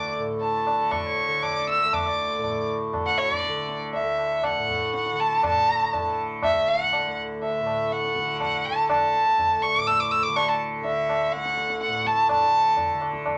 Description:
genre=indian classical, Hindustani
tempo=121 BPM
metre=7/4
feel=straight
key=D raga hamsadhwani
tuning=A4 = 440 Hz
part: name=rich violin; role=melody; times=0.0-13.0 s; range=D5 to E6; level=-25 LUFS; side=equal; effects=none
part: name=hand-pumped harmonium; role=second line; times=0.0-3.9, 12.4-13.1 s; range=D4 to E5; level=-36 LUFS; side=equal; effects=none
part: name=tanpura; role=drone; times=0.0-13.4 s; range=D2 to D3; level=-33 LUFS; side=equal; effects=none
part: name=tabla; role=percussion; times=0.4-13.4 s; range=none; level=-33 LUFS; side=equal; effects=none
room=wet small room ambience, RT60 0.5 s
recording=none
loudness=-24 LUFS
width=mono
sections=0.0-5.4 A section; 5.4-13.4 B section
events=speeding up 0.0-13.4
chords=none

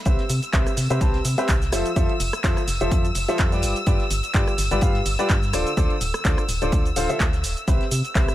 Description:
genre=piano house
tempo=126 BPM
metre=4/4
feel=swing 55% on 16ths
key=C major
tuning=A4 = 440 Hz
part: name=rich chamber violin section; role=sustained chords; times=0.0-8.3 s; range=E6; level=-30 LUFS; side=left 1 dB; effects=sidechain pumping
part: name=clear upright piano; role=riff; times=0.1-8.3 s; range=D3 to A5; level=-26 LUFS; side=left 1 dB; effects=sidechain pumping, dub echo
part: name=organ-like FM bass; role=bass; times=0.1-8.3 s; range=D1 to C3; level=-25 LUFS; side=equal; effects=sidechain pumping
part: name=cloth-damped thuddy drum kit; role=drums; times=0.1-8.3 s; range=hi-hat, snare drum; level=-41 LUFS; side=left 2 dB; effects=none
part: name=electronic kick drum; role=drums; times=0.1-8.3 s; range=none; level=-22 LUFS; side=equal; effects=small room reverb
part: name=punchy analog drum machine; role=drums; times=0.1-8.3 s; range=handclaps, hi-hat, rim click, shaker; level=-28 LUFS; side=right 1 dB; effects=small room reverb
room=little or no reverb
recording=none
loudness=-19 LUFS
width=side -14 dB against mid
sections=0.0-8.3 A section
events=none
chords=0.1 Cmaj7; 1.7 Fmaj7; 3.6 G7; 5.5 Dm7; 7.7 Cmaj7

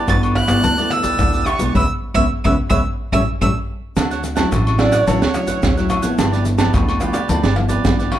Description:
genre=samba and choro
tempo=108 BPM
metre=4/4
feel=straight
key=D major from 4.0 s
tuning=A4 = 440 Hz
part: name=cavaquinho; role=accompaniment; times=0.0-8.2 s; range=D4 to F#5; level=-26 LUFS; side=right 4 dB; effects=none
part: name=nylon-string guitar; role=accompaniment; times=0.0-8.2 s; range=G2 to A4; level=-22 LUFS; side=left 1 dB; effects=none
part: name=rich violin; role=melody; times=0.1-5.9 s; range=C#5 to A6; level=-21 LUFS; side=right 2 dB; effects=none
part: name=upright bass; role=bass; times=0.1-8.2 s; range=G1 to D2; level=-21 LUFS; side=equal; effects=none
part: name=agogo bells, egg shaker, surdo, pandeiro, tamborim and caixa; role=percussion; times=0.1-8.2 s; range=none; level=-19 LUFS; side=equal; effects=none
room=moderate large studio reverb, RT60 0.9 s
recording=dark, warm production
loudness=-15 LUFS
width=side -12 dB against mid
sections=0.0-4.0 A section; 4.0-8.2 B section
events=band accent 1.7-4.0; violin solo 4.0-8.2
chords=0.0 G69; 1.7 C#m7; 2.9 A7; 4.0 Dmaj9; 6.2 G6

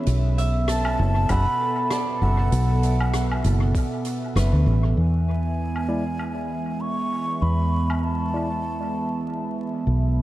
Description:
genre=ambient dub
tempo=98 BPM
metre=4/4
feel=swing 56% on 16ths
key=E mixolydian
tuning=A4 = 440 Hz
part: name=airy breathy pad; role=sustained chords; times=0.0-10.2 s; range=B2 to E5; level=-28 LUFS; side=right 2 dB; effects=chorus
part: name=concert harp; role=arpeggios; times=0.0-6.4 s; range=B3 to A5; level=-34 LUFS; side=right 1 dB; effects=dub echo
part: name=fingered electric bass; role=bass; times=0.1-10.2 s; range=F#1 to E2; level=-21 LUFS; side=equal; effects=none
part: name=soft-mallet drum kit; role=drums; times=0.1-8.0 s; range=hi-hat, rim click, woodblock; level=-34 LUFS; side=equal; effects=dub echo
part: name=breathy mellow concert flute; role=melody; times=0.7-9.6 s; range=F#5 to C#6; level=-29 LUFS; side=right 1 dB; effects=dub echo
part: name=electronic kick drum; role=drums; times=1.3-3.9 s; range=none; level=-24 LUFS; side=equal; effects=overdrive
part: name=barky tine electric piano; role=stabs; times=5.9-8.5 s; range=G#3 to D5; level=-34 LUFS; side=left 2 dB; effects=overdrive, low-pass filter, dub echo
room=moderate spring reverb, RT60 2.4 s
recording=vinyl crackle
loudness=-20 LUFS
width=side -15 dB against mid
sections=0.0-5.0 A section; 5.0-10.2 B section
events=none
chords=0.1 Bm7; 5.0 E

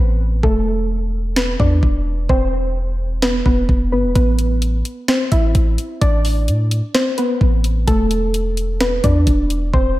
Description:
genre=hip hop, trap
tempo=129 BPM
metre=4/4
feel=half-time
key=A minor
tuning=A4 = 440 Hz
part: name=soft round pluck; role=melody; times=0.0-10.0 s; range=A3 to E5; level=-20 LUFS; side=equal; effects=chorus, analog delay
part: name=warm 808-style bass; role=bass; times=0.0-10.0 s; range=E1 to A2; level=-18 LUFS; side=equal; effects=none
part: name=trap drum kit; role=drums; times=0.4-9.8 s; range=hi-hat, kick drum, snare drum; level=-18 LUFS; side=equal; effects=none
room=light reverb, digital ambience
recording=none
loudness=-15 LUFS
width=side -16 dB against mid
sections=0.0-10.0 A section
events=break 0.0-4.2; hi-hats muted 9.7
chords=0.4 E5; 4.2 Amadd9; 7.9 E5

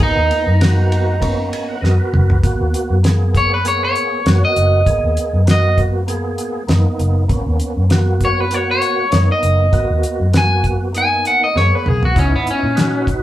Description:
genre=straight-eighth soul blues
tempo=99 BPM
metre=4/4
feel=swing 54% on 16ths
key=G# minor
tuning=A4 = 440 Hz
part: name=electric guitar at the edge of break-up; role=melody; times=0.0-13.1 s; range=B3 to G#5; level=-17 LUFS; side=equal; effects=none
part: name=percussive tonewheel organ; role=accompaniment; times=0.0-13.2 s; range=A#3 to G#5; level=-22 LUFS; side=right 2 dB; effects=slow rotary speaker, overdrive, chorus vibrato
part: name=vintage muted fingered electric bass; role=bass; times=0.0-13.2 s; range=F#1 to A#2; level=-16 LUFS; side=equal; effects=none
part: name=cloth-damped thuddy drum kit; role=drums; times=0.0-13.2 s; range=hi-hat, kick drum, ride cymbal, snare drum, toms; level=-19 LUFS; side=equal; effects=none
room=wet studio reverb, RT60 0.5 s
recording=band playing live in one room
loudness=-13 LUFS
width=side -14 dB against mid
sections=0.0-2.4 A section; 2.4-13.2 B section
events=clean electric guitar solo 0.0-2.4; tonewheel organ fill 1.2-2.4; drum fill 1.8-2.4, 11.6-12.2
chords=0.0 G#m7; 12.2 C#m7

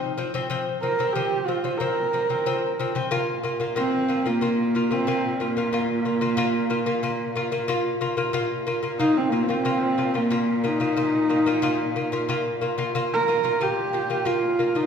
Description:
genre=mongolian traditional, Mongolian folk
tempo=92 BPM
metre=4/4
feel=straight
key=Bb zhi mode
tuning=A4 = 440 Hz
part: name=rich horsehead fiddle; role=melody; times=0.0-14.9 s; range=Bb3 to Bb4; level=-23 LUFS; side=right 1 dB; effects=none
part: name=lute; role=arpeggios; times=0.0-14.9 s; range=F3 to F4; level=-25 LUFS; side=left 2 dB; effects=none
part: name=rich cello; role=drone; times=3.1-14.9 s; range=Bb2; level=-34 LUFS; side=equal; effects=none
room=wet recital hall reverb, RT60 1.3 s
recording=heard from further back in the room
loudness=-21 LUFS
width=side -7 dB against mid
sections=0.0-3.1 A section; 3.1-14.9 B section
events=none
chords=0.0 F5; 3.1 Bb5

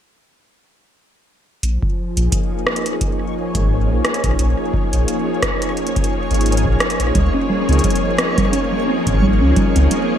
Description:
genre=IDM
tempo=87 BPM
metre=4/4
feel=swing 56% on 16ths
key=Bb dorian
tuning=A4 = 440 Hz
part: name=soft string machine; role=sustained chords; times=1.6-10.2 s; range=F3 to Db5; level=-20 LUFS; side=left 1 dB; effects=ensemble chorus
part: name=dark detuned saw bass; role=bass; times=1.6-9.9 s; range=Ab1 to Db2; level=-16 LUFS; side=equal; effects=none
part: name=booming analog drum machine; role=drums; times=1.6-10.1 s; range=hi-hat, rim click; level=-22 LUFS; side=equal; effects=gated reverb, ping-pong delay
part: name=backwards swelling texture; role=texture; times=2.4-10.2 s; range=Db4 to Db5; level=-28 LUFS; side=right 1 dB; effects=built-in reverb
part: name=electronic kick drum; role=drums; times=1.8-9.7 s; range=none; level=-22 LUFS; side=equal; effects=none
part: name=warbly dusty pluck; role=arpeggios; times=7.1-10.1 s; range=G3 to Db4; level=-20 LUFS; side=right 1 dB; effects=analog chorus, ping-pong delay
room=light reverb, digital ambience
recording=bright 1980s-style digital production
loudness=-15 LUFS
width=side -9 dB against mid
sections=1.6-10.2 A section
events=filter sweep on detuned saw bass 1.6-10.2; break 9.9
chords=1.6 Bbm7; 7.2 Dbmaj9#11

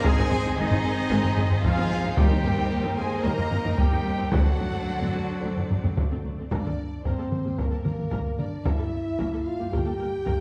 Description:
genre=cinematic, epic orchestral film score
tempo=112 BPM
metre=4/4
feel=straight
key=G dorian from 6.5 s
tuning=A4 = 440 Hz
part: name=warm symphonic violin section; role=melody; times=0.0-10.3 s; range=Eb5 to Bb5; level=-39 LUFS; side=equal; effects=none
part: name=flute section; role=second line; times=0.0-5.9 s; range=Eb5 to Bb5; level=-39 LUFS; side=equal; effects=none
part: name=warm symphonic violin section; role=second line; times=0.0-10.4 s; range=Ab4 to G5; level=-40 LUFS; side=equal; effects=none
part: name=warm symphonic viola section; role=accompaniment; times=0.0-10.3 s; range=D3 to Bb4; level=-36 LUFS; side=equal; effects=none
part: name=rich symphonic string section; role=sustained chords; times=0.0-6.5 s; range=Bb3 to D5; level=-36 LUFS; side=equal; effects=none
part: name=clear trumpet section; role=stabs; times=0.0-6.0 s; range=Eb4 to Bb4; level=-35 LUFS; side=equal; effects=none
part: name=rich symphonic cello section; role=bass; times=0.0-10.3 s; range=G2 to Bb3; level=-35 LUFS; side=equal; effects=none
part: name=rich symphonic double bass section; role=bass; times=0.0-10.3 s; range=G1 to Eb2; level=-36 LUFS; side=equal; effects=none
part: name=taiko ensemble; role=drums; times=0.0-10.4 s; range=none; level=-28 LUFS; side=equal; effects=none
part: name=mellow French horn section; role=sustained chords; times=0.1-10.4 s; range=D3 to G4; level=-35 LUFS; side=equal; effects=none
room=wet recital hall reverb, RT60 1.4 s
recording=heard from further back in the room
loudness=-25 LUFS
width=mono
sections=0.0-6.5 A section; 6.5-10.4 B section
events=none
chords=0.0 Ab; 2.2 Eb6; 4.3 D7; 6.5 Gm

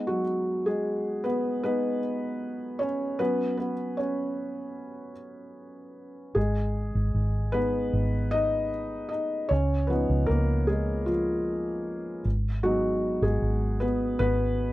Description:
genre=pop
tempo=76 BPM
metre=4/4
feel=straight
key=G# minor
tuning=A4 = 440 Hz
part: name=felt-muted upright piano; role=accompaniment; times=0.0-14.7 s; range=E#3 to D#5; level=-27 LUFS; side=equal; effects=none
part: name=vintage muted fingered electric bass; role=bass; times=6.4-14.7 s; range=G#1 to C#2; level=-27 LUFS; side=equal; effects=none
room=little or no reverb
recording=dry, close 1970s-style studio recording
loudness=-25 LUFS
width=side -16 dB against mid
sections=0.0-14.7 A section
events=felt piano solo 0.0-14.7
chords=0.0 G#m; 3.2 F#sus4; 6.4 G#m; 9.5 C#add9; 12.2 G#m

